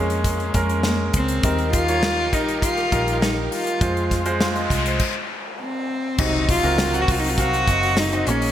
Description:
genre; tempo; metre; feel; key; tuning
piano-driven pop; 101 BPM; 4/4; straight; unclear; A4 = 442 Hz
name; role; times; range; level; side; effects
warm concert grand piano; accompaniment; 0.0-8.5 s; Bb2 to Gb5; -24 LUFS; equal; none
clear studio string section; sustained chords; 0.0-8.5 s; C3 to Bb4; -33 LUFS; equal; none
vintage muted fingered electric bass; bass; 0.0-8.5 s; Gb1 to F2; -25 LUFS; equal; none
modern studio drum kit; drums; 0.1-8.5 s; crash cymbal, hi-hat, kick drum, snare drum; -24 LUFS; equal; gated reverb
warm cello; melody; 0.9-8.5 s; Bb3 to Gb4; -22 LUFS; left 1 dB; none
noise sweep and impact; sound effects; 4.4-8.5 s; none; -30 LUFS; left 2 dB; none
room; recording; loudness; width
moderate plate reverb, RT60 2.4 s; bright 1980s-style digital production; -18 LUFS; side -11 dB against mid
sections
0.0-6.2 A section; 6.2-8.5 B section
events
noise sweep 4.4-6.2; stop 5.0-6.2; impact 6.2-8.5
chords
0.0 Bbm7; 1.4 Eb; 3.8 Fm; 6.2 Cdim

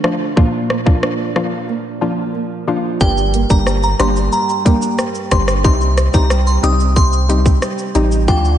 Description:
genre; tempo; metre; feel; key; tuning
dancehall; 91 BPM; 4/4; straight; G minor; A4 = 440 Hz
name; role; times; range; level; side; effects
hollow square pluck; accompaniment; 0.0-8.6 s; F3 to G4; -21 LUFS; left 4 dB; chorus
nylon-string guitar; arpeggios; 0.0-8.6 s; G2 to Eb4; -21 LUFS; right 4 dB; analog chorus
island pop drum kit; drums; 0.0-8.6 s; hi-hat, kick drum, rim click, shaker; -17 LUFS; equal; none
glassy synth bell; melody; 3.0-8.4 s; G5 to Eb6; -20 LUFS; equal; chorus, phaser, analog delay
punchy sub bass; bass; 3.0-8.6 s; G1 to D2; -15 LUFS; equal; none
woodblock; percussion; 8.3-8.4 s; none; -29 LUFS; right 4 dB; none
room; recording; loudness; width
moderate lush hall reverb, RT60 1.8 s; dreamy mix soaked in reverb, nothing above 10.5 kHz; -13 LUFS; side -10 dB against mid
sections
0.0-3.0 A section; 3.0-8.6 B section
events
break 1.7-3.0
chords
0.4 Bb; 3.0 Gm; 5.6 Cm

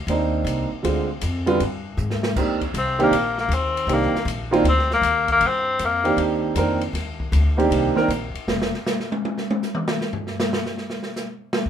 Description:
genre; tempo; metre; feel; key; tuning
jazz, small-group swing and bop; 157 BPM; 4/4; swing 66% on 8ths; C minor; A4 = 440 Hz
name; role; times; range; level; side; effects
upright bass; bass; 0.0-8.7 s; F1 to Ab2; -25 LUFS; left 1 dB; none
warm grand piano; accompaniment; 0.1-8.1 s; D3 to Bb4; -20 LUFS; right 3 dB; none
open jazz drum kit; drums; 0.1-11.7 s; crash cymbal, hi-hat, kick drum, ride cymbal, snare drum, toms; -27 LUFS; equal; none
clear tenor saxophone; melody; 2.8-6.2 s; Bb3 to C4; -20 LUFS; left 3 dB; none
room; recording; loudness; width
moderate club reverb, RT60 0.6 s; minimal, uncompressed stereo recording; -19 LUFS; side -9 dB against mid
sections
0.0-2.4 A section; 2.4-11.7 A section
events
drum fill 2.0-2.4; tenor saxophone solo 2.4-11.7; drum solo 8.5-11.7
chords
0.0 Cm9; 0.8 Dm7b5; 1.6 N.C.; 2.4 Cm9; 8.5 N.C.

